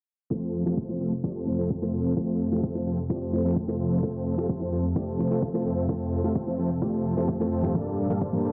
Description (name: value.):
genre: EDM, festival progressive house.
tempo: 129 BPM.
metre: 4/4.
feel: straight.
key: F major.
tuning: A4 = 440 Hz.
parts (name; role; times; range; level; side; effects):
felt-muted upright piano; accompaniment; 0.3-8.4 s; G2 to C5; -33 LUFS; equal; sidechain pumping, tape echo.
lush unison pad; sustained chords; 0.3-8.5 s; F2 to A4; -34 LUFS; equal; chorus, sidechain pumping.
big supersaw lead; riff; 0.3-8.5 s; F3 to F5; -30 LUFS; equal; sidechain pumping, low-pass filter, tape echo.
electronic kick drum; drums; 0.3-8.3 s; none; -32 LUFS; equal; high-pass filter on kick, high-pass filter on room.
electronic hi-hat; drums; 0.5-8.5 s; none; -72 LUFS; equal; none.
room: moderate lush hall reverb, RT60 1.6 s.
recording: low-pass filter.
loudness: -27 LUFS.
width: mono.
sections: 0.3-8.5 A section.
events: filter sweep 0.3-8.5.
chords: 0.3 F; 7.7 Gmadd9.